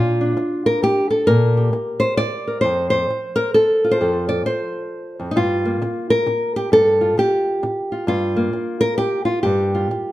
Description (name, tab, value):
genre	folk, solo fingerstyle acoustic guitar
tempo	132 BPM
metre	3/4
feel	swing 62% on 8ths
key	G minor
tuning	A4 = 440 Hz
part	nylon-string guitar	solo	0.0-10.1 s	F2 to D5	-16 LUFS	equal	none
room	moderate large studio reverb, RT60 1.3 s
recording	none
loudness	-16 LUFS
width	side -15 dB against mid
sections	0.0-10.1 A section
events	none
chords	0.0 Bb6; 2.6 F; 5.4 Gm7